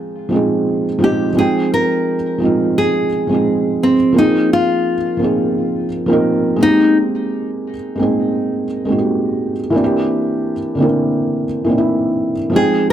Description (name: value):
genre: lo-fi hip hop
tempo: 86 BPM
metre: 4/4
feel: swing 55% on 16ths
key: F dorian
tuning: A4 = 440 Hz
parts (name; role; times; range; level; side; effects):
- felt-muted upright piano; accompaniment; 0.0-12.9 s; D3 to G5; -15 LUFS; right 1 dB; plate reverb
- nylon-string guitar; melody; 1.0-7.0, 12.6-12.9 s; C4 to Bb4; -16 LUFS; left 1 dB; plate reverb
room: moderate small room reverb, RT60 0.5 s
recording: none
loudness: -14 LUFS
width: side -10 dB against mid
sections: 0.0-1.4 A section; 1.4-12.9 B section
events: break 6.9-12.5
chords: 0.0 Fm9; 4.1 Bb9sus4; 6.6 Abmaj7; 9.7 C7